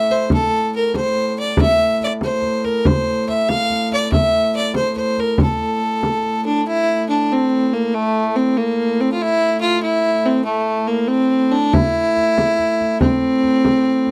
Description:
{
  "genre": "medieval dance",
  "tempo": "94 BPM (dotted quarters)",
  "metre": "6/8",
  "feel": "straight",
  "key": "A phrygian",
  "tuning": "A4 = 440 Hz",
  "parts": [
    { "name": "clear fiddle", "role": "melody", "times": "0.0-14.1 s", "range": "A3 to F5", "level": "-19 LUFS", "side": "equal", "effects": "none" },
    { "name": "dark hurdy-gurdy", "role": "drone", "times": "0.0-14.1 s", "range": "A2", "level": "-27 LUFS", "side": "equal", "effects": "none" },
    { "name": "frame drum", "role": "percussion", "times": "0.1-6.2, 11.7-14.1 s", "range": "none", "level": "-21 LUFS", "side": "equal", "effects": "none" }
  ],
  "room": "light reverb",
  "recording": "dry, close 1970s-style studio recording",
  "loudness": "-18 LUFS",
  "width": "mono",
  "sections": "0.0-6.7 A section; 6.7-14.1 A section",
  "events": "none",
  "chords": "none"
}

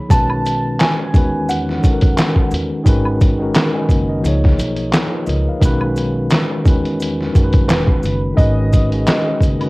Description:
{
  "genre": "lo-fi hip hop",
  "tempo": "87 BPM",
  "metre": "4/4",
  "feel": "swing 56% on 16ths",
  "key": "G# minor",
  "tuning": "A4 = 440 Hz",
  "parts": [
    { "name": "felt-muted upright piano", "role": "melody", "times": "0.0-2.5, 7.7-9.7 s", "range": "B4 to B5", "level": "-22 LUFS", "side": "right 1 dB", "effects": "cassette tape" },
    { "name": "tine electric piano", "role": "accompaniment", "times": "0.0-9.7 s", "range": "D#3 to B5", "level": "-19 LUFS", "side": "left 1 dB", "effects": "medium stereo tremolo, cassette tape" },
    { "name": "upright bass", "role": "bass", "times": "0.1-9.7 s", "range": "E1 to F#2", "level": "-21 LUFS", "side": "equal", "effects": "none" },
    { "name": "lo-fi sampler-style drum kit", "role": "drums", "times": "0.1-9.7 s", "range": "handclaps, hi-hat, kick drum, snare drum", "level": "-14 LUFS", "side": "equal", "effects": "none" },
    { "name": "maracas and woodblock", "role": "percussion", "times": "0.1-9.7 s", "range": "none", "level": "-30 LUFS", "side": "equal", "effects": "none" }
  ],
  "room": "small room ambience",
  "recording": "home recording on cassette",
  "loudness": "-13 LUFS",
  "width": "side -23 dB against mid",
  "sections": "0.0-8.4 A section; 8.4-9.7 B section",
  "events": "none",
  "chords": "0.1 B13; 1.1 E69; 2.9 G#m9; 4.2 C#9; 5.6 B69; 6.7 E69; 8.4 G#m7"
}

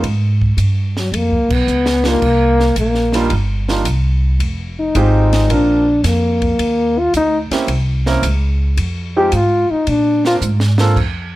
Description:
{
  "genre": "jazz, small-group swing and bop",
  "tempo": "110 BPM",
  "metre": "4/4",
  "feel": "swing 69% on 8ths",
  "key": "unclear",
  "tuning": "A4 = 440 Hz",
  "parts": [
    { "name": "warm grand piano", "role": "accompaniment", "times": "0.0-11.0 s", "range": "G3 to Bb4", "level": "-20 LUFS", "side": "right 3 dB", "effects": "none" },
    { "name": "upright bass", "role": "bass", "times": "0.0-11.4 s", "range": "F1 to Bb2", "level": "-16 LUFS", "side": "equal", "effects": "none" },
    { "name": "compact cocktail drum kit", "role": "drums", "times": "0.0-11.1 s", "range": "crash cymbal, hi-hat, kick drum, ride cymbal, snare drum", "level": "-24 LUFS", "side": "equal", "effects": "none" },
    { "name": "dark trombone", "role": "melody", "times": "1.0-10.4 s", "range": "Gb3 to G4", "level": "-15 LUFS", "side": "left 1 dB", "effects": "none" }
  ],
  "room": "little or no reverb",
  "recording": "none",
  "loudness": "-13 LUFS",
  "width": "side -16 dB against mid",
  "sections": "0.0-11.0 A section",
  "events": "band accent 1.4; drum fill 1.7-2.2, 10.4-11.0",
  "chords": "0.0 Db7; 2.2 Cm11; 4.4 Fm7; 5.5 Bbadd9; 6.6 Ebmaj7; 7.7 C7b9; 8.8 Fm7; 9.9 Bb9"
}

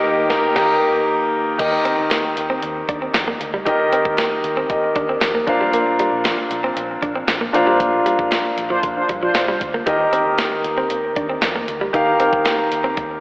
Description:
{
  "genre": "1980s-style pop",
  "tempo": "116 BPM",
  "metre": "4/4",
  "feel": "straight",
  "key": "unclear",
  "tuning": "A4 = 440 Hz",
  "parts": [
    { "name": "clear concert grand piano", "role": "accompaniment", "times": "0.0-13.2 s", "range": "Bb2 to Bb5", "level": "-18 LUFS", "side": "equal", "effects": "none" },
    { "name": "mellow synth brass", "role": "stabs", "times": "0.3-0.7, 8.7-9.4 s", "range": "D4 to C5", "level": "-23 LUFS", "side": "equal", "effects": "chorus, digital delay" },
    { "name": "vintage muted fingered electric bass", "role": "bass", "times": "0.3-13.2 s", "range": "A1 to F2", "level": "-38 LUFS", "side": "equal", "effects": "none" },
    { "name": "clean 12-bit digital drum machine", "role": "drums", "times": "0.3-13.1 s", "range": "crash cymbal, hi-hat, kick drum, snare drum, tambourine", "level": "-23 LUFS", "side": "equal", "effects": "overdrive" },
    { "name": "direct-recorded clean electric guitar", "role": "riff", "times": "1.6-13.0 s", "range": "F3 to Eb4", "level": "-25 LUFS", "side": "right 1 dB", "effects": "lush chorus, digital delay" },
    { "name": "group handclap", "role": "percussion", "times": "2.1-12.6 s", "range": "none", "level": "barely audible", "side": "none", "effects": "none" }
  ],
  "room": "wet lush hall reverb, RT60 2.3 s",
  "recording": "big arena sound, telephone sound",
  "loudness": "-16 LUFS",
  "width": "side -22 dB against mid",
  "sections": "0.0-1.6 A section; 1.6-13.2 B section",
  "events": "band accent 0.0-1.6, 7.8-9.9; grand piano fill 0.6-1.6",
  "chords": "0.0 Eb; 5.5 Bbadd9; 9.9 Eb"
}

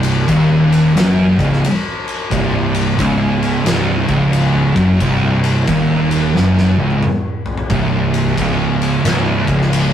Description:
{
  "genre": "stoner and doom metal",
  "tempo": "89 BPM",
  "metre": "4/4",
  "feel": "swing 64% on 8ths",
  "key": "unclear",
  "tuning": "A4 = 440 Hz",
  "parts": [
    { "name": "thick fuzz guitar", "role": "riff", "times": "0.0-9.9 s", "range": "C2 to F#2", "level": "-19 LUFS", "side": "left 7 dB", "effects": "distortion" },
    { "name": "thick fuzz guitar", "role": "riff", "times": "0.0-9.9 s", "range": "C2 to F#2", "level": "-15 LUFS", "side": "right 3 dB", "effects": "distortion" },
    { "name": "fuzz fingered electric bass", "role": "bass", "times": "0.0-9.9 s", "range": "C1 to F#1", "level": "-20 LUFS", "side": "left 1 dB", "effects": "overdrive" },
    { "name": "oversized low-tuned drum kit", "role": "drums", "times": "0.0-9.9 s", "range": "kick drum, ride cymbal, snare drum, toms", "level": "-21 LUFS", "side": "left 2 dB", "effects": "none" }
  ],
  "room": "moderate stone room reverb, RT60 1.1 s",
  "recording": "rough rehearsal-room recording, warm saturation",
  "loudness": "-12 LUFS",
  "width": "side -9 dB against mid",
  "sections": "0.0-9.9 A section",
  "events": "drum fill 6.4-7.7",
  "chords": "0.0 Cm"
}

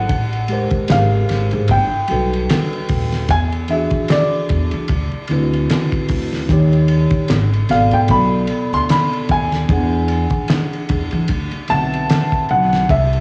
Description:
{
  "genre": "R&B, neo-soul",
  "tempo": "75 BPM",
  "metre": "4/4",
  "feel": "swing 56% on 16ths",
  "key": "unclear",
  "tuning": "A4 = 441 Hz",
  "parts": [
    { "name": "warm baby grand piano", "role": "melody", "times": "0.0-13.2 s", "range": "D5 to C6", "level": "-22 LUFS", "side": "equal", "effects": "cassette tape" },
    { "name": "mellow tine electric piano", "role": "accompaniment", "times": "0.0-12.9 s", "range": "B2 to F#5", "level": "-23 LUFS", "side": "equal", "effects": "none" },
    { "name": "upright bass", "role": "bass", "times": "0.0-13.2 s", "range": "D#1 to E3", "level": "-21 LUFS", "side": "equal", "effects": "transformer saturation" },
    { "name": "cloth-damped thuddy drum kit", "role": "drums", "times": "0.1-13.2 s", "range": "handclaps, hi-hat, kick drum, ride cymbal, snare drum", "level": "-23 LUFS", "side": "equal", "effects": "cassette tape" }
  ],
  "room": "light reverb, small room ambience",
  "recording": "home recording on cassette, studio reverb",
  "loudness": "-17 LUFS",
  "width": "mono",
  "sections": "0.0-13.2 A section",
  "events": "none",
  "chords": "0.1 Am7; 0.9 G#maj9; 1.7 Gmaj9; 3.3 E9; 4.9 D13; 6.5 D#7; 7.3 G#dim7; 8.1 Bm7; 9.7 E9; 11.3 D13"
}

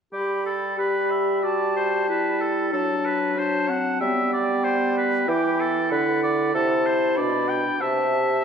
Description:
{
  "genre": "quick classical-period movement for symphony orchestra",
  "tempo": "94 BPM",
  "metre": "2/4",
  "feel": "rubato",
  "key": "G major",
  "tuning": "A4 = 440 Hz",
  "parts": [
    { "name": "clear oboe", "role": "second line", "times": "0.1-8.4 s", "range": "G4 to G5", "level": "-26 LUFS", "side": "right 1 dB", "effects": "none" },
    { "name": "mellow clarinet", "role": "second line", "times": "0.1-8.4 s", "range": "B3 to G4", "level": "-27 LUFS", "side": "equal", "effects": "none" },
    { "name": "silver concert flute", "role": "second line", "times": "0.1-8.4 s", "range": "F#5 to B5", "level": "-29 LUFS", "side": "left 3 dB", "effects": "none" },
    { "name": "mellow bassoon", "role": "accompaniment", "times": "0.1-8.4 s", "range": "B2 to G3", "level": "-24 LUFS", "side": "right 1 dB", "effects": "none" }
  ],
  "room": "wet concert hall reverb, RT60 2.1 s",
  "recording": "dark, warm production",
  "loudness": "-20 LUFS",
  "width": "side -7 dB against mid",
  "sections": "0.1-8.4 A section",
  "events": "none",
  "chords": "0.1 G; 2.7 D7/F#; 4.0 G; 5.3 Emadd11; 5.9 Bm/D; 6.5 Am/C; 7.2 G/B; 7.8 Am7/C"
}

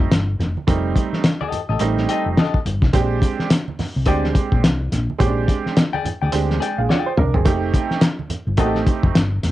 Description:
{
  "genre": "funk",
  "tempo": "106 BPM",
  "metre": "4/4",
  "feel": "swing 60% on 16ths",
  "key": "unclear",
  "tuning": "A4 = 440 Hz",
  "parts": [
    { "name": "bright upright piano", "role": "stabs", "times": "0.0-9.2 s", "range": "G3 to F5", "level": "-22 LUFS", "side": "right 6 dB", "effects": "cassette tape" },
    { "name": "hollow-body short-scale fingered electric bass", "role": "bass", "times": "0.0-9.5 s", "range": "F1 to D2", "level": "-22 LUFS", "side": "left 1 dB", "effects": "none" },
    { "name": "cloth-damped thuddy drum kit", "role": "drums", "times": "0.0-9.5 s", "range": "hi-hat, kick drum, snare drum, toms", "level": "-18 LUFS", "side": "left 1 dB", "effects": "cassette tape" },
    { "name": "congas", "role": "percussion", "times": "0.1-9.5 s", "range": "none", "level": "-31 LUFS", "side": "right 4 dB", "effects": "none" },
    { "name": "clean electric guitar", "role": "accompaniment", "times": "1.4-8.8 s", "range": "G4 to G5", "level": "-24 LUFS", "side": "left 8 dB", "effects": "cassette tape" }
  ],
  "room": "light reverb",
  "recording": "home recording on cassette",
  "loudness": "-17 LUFS",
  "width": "side -15 dB against mid",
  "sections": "0.0-9.5 A section",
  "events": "drum fill 6.9-7.5",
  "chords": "0.0 F9; 2.9 Bb13; 7.5 F9"
}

